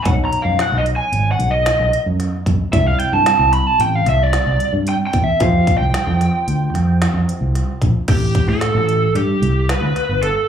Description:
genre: progressive instrumental, band music in an uneven meter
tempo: 112 BPM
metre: 5/4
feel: straight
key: unclear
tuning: A4 = 438 Hz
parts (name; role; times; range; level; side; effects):
- lead guitar through a small cranked amp; melody; 0.0-10.5 s; G4 to B5; -18 LUFS; right 1 dB; overdrive, slapback echo
- dark grand piano; accompaniment; 0.0-8.0 s; B2 to D5; -27 LUFS; left 1 dB; slapback echo
- fingered electric bass; bass; 0.1-10.3 s; G1 to A2; -17 LUFS; equal; none
- organic electronic drum kit; drums; 0.1-10.3 s; crash cymbal, hi-hat, kick drum, snare drum; -22 LUFS; equal; none
room: light reverb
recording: live gig heard through the venue's PA, club reverb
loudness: -14 LUFS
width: side -8 dB against mid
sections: 0.0-8.1 A section; 8.1-10.5 B section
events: lead electric guitar solo 0.0-8.1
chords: 0.1 Badd9; 2.7 Cadd9; 5.4 Fsus2; 8.1 Am7

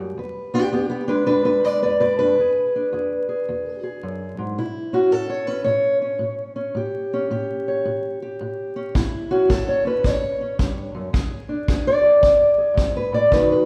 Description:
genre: acoustic country blues, solo or duo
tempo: 110 BPM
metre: 4/4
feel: swing 65% on 8ths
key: E mixolydian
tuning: A4 = 440 Hz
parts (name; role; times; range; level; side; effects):
- fingerpicked steel-string acoustic guitar; melody; 0.0-13.7 s; E2 to D5; -21 LUFS; equal; none
- kick drum; drums; 9.0-13.5 s; none; -25 LUFS; equal; none
room: wet recital hall reverb, RT60 1.6 s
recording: recorded in a church or concert hall, vinyl crackle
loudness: -21 LUFS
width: mono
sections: 0.0-13.7 A section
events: none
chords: 0.2 E7; 4.6 A7; 11.1 E7

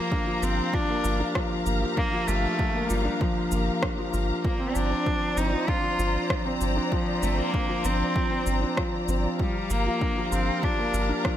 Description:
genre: piano and strings electronica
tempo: 97 BPM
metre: 4/4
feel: straight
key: G minor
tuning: A4 = 440 Hz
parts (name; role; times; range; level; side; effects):
- clear cello; melody; 0.0-11.3 s; F3 to F4; -30 LUFS; equal; tape echo
- dark studio string section; sustained chords; 0.0-11.4 s; G4 to Bb5; -32 LUFS; left 2 dB; sidechain pumping
- felt-muted upright piano; riff; 0.0-11.4 s; F3 to F4; -29 LUFS; equal; tape echo
- electronic kick drum; drums; 0.1-11.4 s; none; -29 LUFS; equal; overdrive, studio reverb
- warm sub bass; bass; 0.4-11.1 s; G1; -27 LUFS; equal; sidechain pumping
- electronic shaker and rim click; drums; 0.4-11.4 s; none; -32 LUFS; equal; overdrive, studio reverb
room: light reverb, studio ambience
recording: none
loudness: -23 LUFS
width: side -11 dB against mid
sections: 0.0-11.4 A section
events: none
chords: 0.0 Gm7; 4.4 Bbadd9/G; 9.4 Gm7

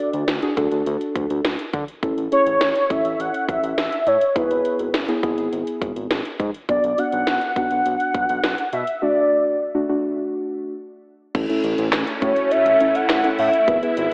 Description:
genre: synth-pop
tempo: 103 BPM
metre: 4/4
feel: straight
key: A major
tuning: A4 = 440 Hz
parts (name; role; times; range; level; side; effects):
- warm velvety synth lead; melody; 0.0-14.1 s; B4 to F#5; -19 LUFS; equal; chorus, digital delay
- muted felt-like synth keys; accompaniment; 0.0-14.1 s; A3 to B4; -24 LUFS; equal; chorus, slapback echo
- smooth synth bass; bass; 0.1-14.1 s; G#1 to D3; -28 LUFS; equal; none
- house drum kit; drums; 0.1-14.1 s; crash cymbal, handclaps, hi-hat, kick drum, snare drum; -24 LUFS; equal; none
- string machine, violas; sustained chords; 11.7-14.1 s; G#3 to E4; -26 LUFS; equal; ensemble chorus
room: wet lush hall reverb, RT60 2.0 s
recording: big arena sound, telephone sound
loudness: -18 LUFS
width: side -31 dB against mid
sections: 0.0-11.3 A section; 11.3-14.1 B section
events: none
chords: 0.0 D; 2.0 A; 4.4 E/G#; 6.7 Bm; 9.0 D; 11.3 A

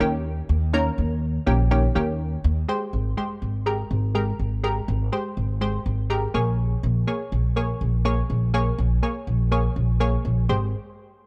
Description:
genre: dance-pop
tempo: 123 BPM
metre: 4/4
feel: straight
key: Ab major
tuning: A4 = 440 Hz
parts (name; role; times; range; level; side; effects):
- punchy chord stab; accompaniment; 0.0-10.7 s; Eb3 to Db5; -29 LUFS; equal; chorus
- upright bass; bass; 0.0-10.7 s; Ab1 to Eb2; -25 LUFS; equal; none
room: light reverb, small room ambience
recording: dark, warm production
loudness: -24 LUFS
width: mono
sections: 0.0-2.7 A section; 2.7-10.5 B section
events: drop 0.0-2.7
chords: 0.0 Eb7; 2.7 Abmaj7; 6.3 Bbm7; 10.5 Abmaj7

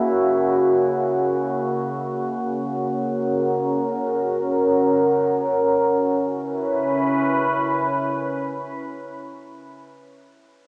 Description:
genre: ambient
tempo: free time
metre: none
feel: none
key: C# dorian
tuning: A4 = 440 Hz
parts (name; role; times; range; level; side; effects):
- evolving wavetable pad; sustained chords; 0.0-9.0 s; C#3 to B4; -19 LUFS; equal; phaser, built-in reverb
room: wet lush hall reverb, RT60 2.7 s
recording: tape saturation, small speaker sound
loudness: -19 LUFS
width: side -37 dB against mid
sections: 0.0-5.9 A section; 5.9-8.2 B section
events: none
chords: 0.0 F#7/C#; 1.2 F#/C#; 5.9 C#m7

